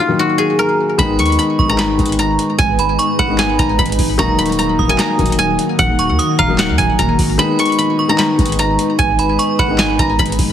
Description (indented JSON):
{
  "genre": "hip hop, trap",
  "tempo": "150 BPM",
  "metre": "4/4",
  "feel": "half-time",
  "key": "unclear",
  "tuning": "A4 = 439 Hz",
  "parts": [
    { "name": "guzheng", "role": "melody", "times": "0.0-10.5 s", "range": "F4 to Db6", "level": "-17 LUFS", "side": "right 1 dB", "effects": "ping-pong delay" },
    { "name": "dark concert grand piano", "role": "accompaniment", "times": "0.0-10.5 s", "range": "Eb3 to Eb4", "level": "-18 LUFS", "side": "left 4 dB", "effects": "none" },
    { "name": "metallic FM bell", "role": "second line", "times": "1.0-10.2 s", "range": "Bb5 to Eb6", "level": "-22 LUFS", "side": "right 6 dB", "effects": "chorus, ping-pong delay" },
    { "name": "granular cloud pad", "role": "sustained chords", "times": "2.3-10.5 s", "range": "Eb3 to Cb5", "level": "-23 LUFS", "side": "right 1 dB", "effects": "built-in reverb" },
    { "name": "long sustained 808-style bass", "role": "bass", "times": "1.0-10.5 s", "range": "Eb1 to Eb2", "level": "-20 LUFS", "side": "right 1 dB", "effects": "none" },
    { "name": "booming analog drum machine", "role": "drums", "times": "1.0-10.5 s", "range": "handclaps, hi-hat, kick drum, snare drum", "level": "-19 LUFS", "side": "equal", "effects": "none" }
  ],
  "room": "light reverb, digital ambience",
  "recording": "heavily compressed radio sound",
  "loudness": "-12 LUFS",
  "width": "side -10 dB against mid",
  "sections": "1.0-10.5 A section",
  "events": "break 0.0-1.0; kick muted 7.4-8.2",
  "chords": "0.0 Ebm; 1.0 Abm; 4.2 Ebm; 7.4 Abm"
}